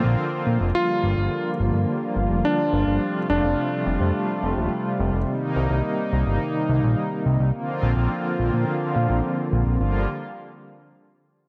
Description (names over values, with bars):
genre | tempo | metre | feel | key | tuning
synthwave | 106 BPM | 4/4 | straight | G minor | A4 = 440 Hz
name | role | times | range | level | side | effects
warm electric grand piano | melody | 0.0-5.2 s | D4 to C5 | -28 LUFS | equal | digital delay
brassy analog pad | sustained chords | 0.0-10.1 s | C3 to F4 | -27 LUFS | equal | chorus, tremolo
fat analog bass | bass | 0.0-10.1 s | Eb1 to Bb2 | -24 LUFS | equal | none
room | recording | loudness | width
moderate lush hall reverb, RT60 1.8 s, digital ambience | bright 1980s-style digital production | -23 LUFS | mono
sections
0.7-9.8 A section; 9.8-11.5 B section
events
none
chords
0.0 Bbadd9; 0.7 Gm7; 3.0 Fadd9; 5.3 Cm7; 7.5 Bbadd9; 9.8 Gm7